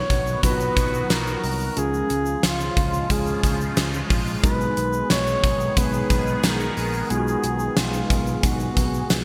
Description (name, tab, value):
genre	1980s-style pop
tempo	90 BPM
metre	4/4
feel	straight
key	G# dorian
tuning	A4 = 440 Hz
part	mellow flugelhorn	melody	0.0-9.2 s	E#4 to C#5	-29 LUFS	equal	none
part	tine electric piano	accompaniment	0.0-9.2 s	F#3 to G#4	-31 LUFS	equal	subtle chorus
part	sweeping resonant pad	sustained chords	0.0-9.2 s	C#3 to G#4	-33 LUFS	equal	chorus
part	sustaining fretless electric bass	bass	0.1-9.2 s	A#1 to C#2	-30 LUFS	equal	lush chorus
part	gated 80s drum kit	drums	0.1-9.2 s	hi-hat, kick drum, snare drum, tambourine	-25 LUFS	equal	gated reverb
part	tube shaker	percussion	0.3-9.2 s	none	-44 LUFS	equal	none
room	moderate plate reverb, RT60 2.8 s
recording	bright 1980s-style digital production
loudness	-22 LUFS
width	mono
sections	0.0-9.2 A section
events	none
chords	0.0 B; 1.8 C#; 4.4 G#m7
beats	0.43 1.10 | 1.77 2.44 3.10 3.77 | 4.43 5.10 5.77 6.43 | 7.10 7.77 8.44 9.10